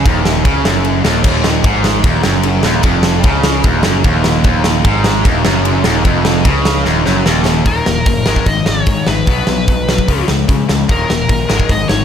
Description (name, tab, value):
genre	punk rock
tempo	149 BPM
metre	4/4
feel	straight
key	Eb minor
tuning	A4 = 440 Hz
part	cranked stack guitar	riff	0.0-7.7 s	Eb2 to Db3	-17 LUFS	right 12 dB	overdrive
part	tight distorted guitar	riff	0.0-12.0 s	Eb2 to Db4	-18 LUFS	left 12 dB	distortion
part	fuzz picked electric bass	bass	0.0-12.0 s	Eb1 to Db3	-18 LUFS	equal	overdrive
part	big rock drum kit	drums	0.1-12.0 s	crash cymbal, hi-hat, kick drum, ride cymbal, snare drum	-14 LUFS	equal	none
part	smooth overdriven lead guitar	melody	7.7-12.0 s	Bb4 to Eb5	-19 LUFS	equal	ping-pong delay
room	little or no reverb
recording	none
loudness	-10 LUFS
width	side -8 dB against mid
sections	0.0-7.7 A section; 7.7-12.0 B section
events	drum fill 6.9-7.7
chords	0.0 Ebm; 8.3 Ab5; 9.3 B5; 10.1 Db5; 10.9 Eb5; 11.5 Ab5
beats	0.06 0.45 0.85 | 1.25 1.65 2.05 2.44 | 2.85 3.25 3.65 4.05 | 4.45 4.85 5.25 5.65 | 6.05 6.46 6.86 7.26 | 7.66 8.07 8.47 8.87 | 9.28 9.68 10.09 10.49 | 10.89 11.30 11.70